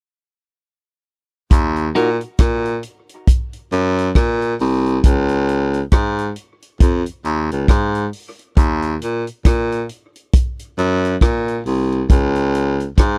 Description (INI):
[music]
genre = dub reggae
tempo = 68 BPM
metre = 4/4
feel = swing 59% on 16ths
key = Eb minor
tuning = A4 = 440 Hz
[part]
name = clear baritone saxophone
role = bass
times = 1.5-13.2 s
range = C2 to Bb2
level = -20 LUFS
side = equal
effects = none
[part]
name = vintage drum kit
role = drums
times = 1.5-13.2 s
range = hi-hat, kick drum, rim click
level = -16 LUFS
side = equal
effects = none
[part]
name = clean electric guitar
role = accompaniment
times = 2.0-2.1 s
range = Eb4 to Bb4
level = -23 LUFS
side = equal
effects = lush chorus
[sound]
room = studio reverb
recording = dry, close 1970s-style studio recording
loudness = -18 LUFS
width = mono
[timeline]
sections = 1.5-13.2 A section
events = none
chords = 1.5 Ebm; 5.0 Db5; 8.6 Ebm; 12.1 Db5